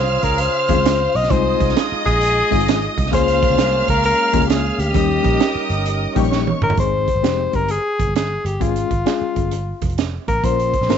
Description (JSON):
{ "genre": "uptempo 1960s-style soul", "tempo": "132 BPM", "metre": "4/4", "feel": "swing 66% on 8ths", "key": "Ab major", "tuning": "A4 = 440 Hz", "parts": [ { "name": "breathy alto saxophone", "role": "melody", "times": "0.0-11.0 s", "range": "F4 to Eb5", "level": "-20 LUFS", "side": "left 2 dB", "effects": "slapback echo" }, { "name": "warm horn section", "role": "second line", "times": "0.0-6.6 s", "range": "Bb3 to Bb4", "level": "-29 LUFS", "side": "right 15 dB", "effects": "none" }, { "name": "warm studio violin section", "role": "second line", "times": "0.0-6.8 s", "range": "Db5 to F6", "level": "-24 LUFS", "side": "equal", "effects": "none" }, { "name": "mellow tonewheel organ", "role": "sustained chords", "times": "0.0-6.8 s", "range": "Db3 to C5", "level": "-28 LUFS", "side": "right 1 dB", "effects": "slow rotary speaker, chorus vibrato" }, { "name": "vintage muted picked electric bass", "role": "bass", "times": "0.0-11.0 s", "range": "F1 to Eb2", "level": "-22 LUFS", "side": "right 1 dB", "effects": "none" }, { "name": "crunchy breakbeat drum kit", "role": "drums", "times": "0.2-11.0 s", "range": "hi-hat, kick drum, snare drum, toms", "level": "-21 LUFS", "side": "right 5 dB", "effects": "none" }, { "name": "barky reed electric piano", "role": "accompaniment", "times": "0.7-11.0 s", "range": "G3 to Bb4", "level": "-23 LUFS", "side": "left 16 dB", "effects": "overdrive, fast tremolo" } ], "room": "studio reverb", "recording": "1960s-style stereo with parts hard left and right, nothing above 7.8 kHz", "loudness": "-15 LUFS", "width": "side -8 dB against mid", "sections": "0.0-6.8 A section; 6.8-11.0 B section", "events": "drum fill 6.3-6.8", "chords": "0.0 Dbmaj7; 1.3 Fm7; 3.1 Bbm7; 5.0 Eb7; 6.8 Ab; 8.6 Db; 10.4 Bbm", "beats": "0.39 0.85 | 1.30 1.76 2.22 2.67 | 3.13 3.58 4.04 4.50 | 4.95 5.41 5.87 6.32 | 6.78 7.24 7.69 8.15 | 8.61 9.06 9.52 9.98 | 10.44 10.89" }